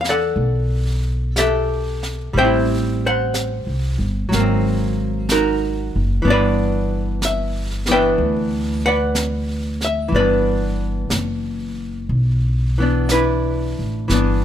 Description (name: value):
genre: jazz ballad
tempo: 61 BPM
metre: 4/4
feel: swing 69% on 8ths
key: G major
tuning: A4 = 439 Hz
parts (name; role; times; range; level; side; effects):
- archtop guitar, miked and amplified; accompaniment; 0.0-14.4 s; E3 to G5; -19 LUFS; left 1 dB; none
- upright bass; bass; 0.0-14.4 s; Gb1 to E2; -20 LUFS; equal; none
- jazz brush drum kit; drums; 0.0-14.4 s; brushed snare drum, hi-hat, snare drum; -28 LUFS; right 2 dB; none
room: little or no reverb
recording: close, detailed microphones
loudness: -17 LUFS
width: side -10 dB against mid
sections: 0.0-14.1 A section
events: none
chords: 0.0 Em11; 2.3 Am7; 4.3 Ab9; 6.2 G6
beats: 0.36 1.34 | 2.33 3.32 4.30 5.27 | 6.24 7.21 8.18 9.14 | 10.12 11.10 12.09 13.09 | 14.09